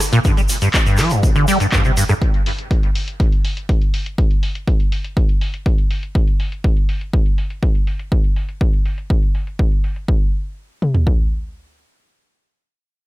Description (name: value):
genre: acid house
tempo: 122 BPM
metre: 4/4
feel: straight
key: G minor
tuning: A4 = 440 Hz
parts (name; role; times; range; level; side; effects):
- punchy analog drum machine; drums; 0.0-10.1 s; handclaps, hi-hat, rim click; -25 LUFS; equal; low-pass filter on snare, low-pass filter on hats
- tube shaker; percussion; 0.0-2.2 s; none; -27 LUFS; right 2 dB; none
- liquid acid bass; riff; 0.1-2.1 s; G2 to G3; -17 LUFS; equal; ensemble chorus, sidechain pumping, tape echo
- punchy analog drum machine; drums; 0.2-11.2 s; kick drum, toms; -16 LUFS; equal; none
room: little or no reverb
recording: none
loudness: -15 LUFS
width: side -18 dB against mid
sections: 0.0-10.1 A section; 10.1-13.1 B section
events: none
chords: none